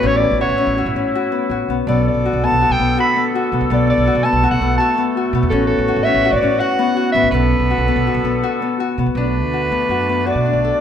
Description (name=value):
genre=contemporary instrumental, chamber music in an uneven meter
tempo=165 BPM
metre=5/4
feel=straight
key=B minor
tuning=A4 = 440 Hz
part: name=warm soprano saxophone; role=melody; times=0.0-10.8 s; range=A4 to B5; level=-18 LUFS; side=right 1 dB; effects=none
part: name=warm woodwind section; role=sustained chords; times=0.0-10.8 s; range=D3 to A4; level=-25 LUFS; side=equal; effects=none
part: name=Celtic harp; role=arpeggios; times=0.0-10.8 s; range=B3 to A4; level=-19 LUFS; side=left 5 dB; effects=none
part: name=upright bass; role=bass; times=0.0-10.7 s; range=A1 to B2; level=-20 LUFS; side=right 3 dB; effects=none
room=moderate recital hall reverb, RT60 1.4 s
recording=none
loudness=-14 LUFS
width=side -8 dB against mid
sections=0.0-9.2 A section; 9.2-10.8 B section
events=none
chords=0.0 F#m7/A; 1.9 Bm7; 5.5 F#m7/A; 7.3 Bm7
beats=| 0.03 0.39 0.76 1.13 1.50 | 1.87 2.24 2.61 2.98 3.34 | 3.70 4.07 4.43 4.79 5.15 | 5.51 5.88 6.24 6.60 6.96 | 7.33 7.69 8.06 8.42 8.80 | 9.17 9.54 9.90 10.27 10.63